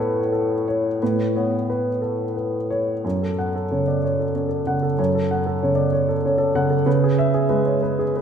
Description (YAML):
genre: neoclassical minimalist piano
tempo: 58-65 BPM (dotted quarters)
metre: 6/8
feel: rubato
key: unclear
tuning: A4 = 443 Hz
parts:
  - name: warm upright piano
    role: solo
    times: 0.0-8.2 s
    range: F#2 to F#5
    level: -19 LUFS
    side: equal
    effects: none
room: wet concert hall reverb, RT60 2.1 s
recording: recorded in a church or concert hall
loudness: -19 LUFS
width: side -7 dB against mid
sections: 0.0-3.0 A section; 3.0-8.2 B section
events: none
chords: 0.0 Aadd9; 3.0 F#m; 6.9 C#m7